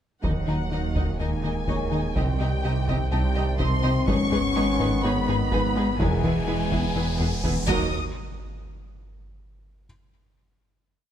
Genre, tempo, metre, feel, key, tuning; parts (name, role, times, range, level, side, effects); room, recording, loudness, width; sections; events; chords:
cinematic, hybrid orchestral and electronic film score; 125 BPM; 4/4; straight; A4 = 440 Hz
warm symphonic violin section; melody; 0.2-7.9 s; Gb5 to Eb6; -32 LUFS; left 2 dB
rich symphonic violin section; second line; 0.2-7.9 s; Eb4 to Eb5; -35 LUFS; left 1 dB
rich symphonic viola section; accompaniment; 0.2-7.9 s; Gb3 to Gb4; -35 LUFS; right 3 dB
bright trombone section; sustained chords; 0.2-7.9 s; C3 to Cb4; -35 LUFS; right 5 dB
mellow French horn section; sustained chords; 0.2-7.9 s; Gb3 to Eb4; -30 LUFS; left 5 dB
plucky analog bass; riff; 0.2-7.6 s; C2 to Ab3; -28 LUFS; left 2 dB
punchy sub bass; bass; 0.2-7.9 s; Eb1 to C2; -31 LUFS; equal
rich symphonic double bass section; bass; 0.2-7.9 s; E1 to Eb2; -31 LUFS; right 5 dB
warm symphonic cello section; bass; 0.2-7.9 s; Eb2 to Eb3; -31 LUFS; right 2 dB
solo taiko drums; drums; 0.2-8.6 s; -30 LUFS; equal
felt-muted upright piano; texture; 0.5-8.0 s; Bb4 to Db6; -38 LUFS; equal; tape echo
riser and impact; sound effects; 5.7-9.6 s; -37 LUFS; equal
light reverb; -22 LUFS; side -10 dB against mid
0.2-7.9 theme; 7.9-9.8 final hit
riser 5.7-7.9; impact 7.9-9.8
0.2 Ebm; 2.2 Cm; 4.1 Abm; 6.0 E; 7.7 Ebm; 7.9 N.C.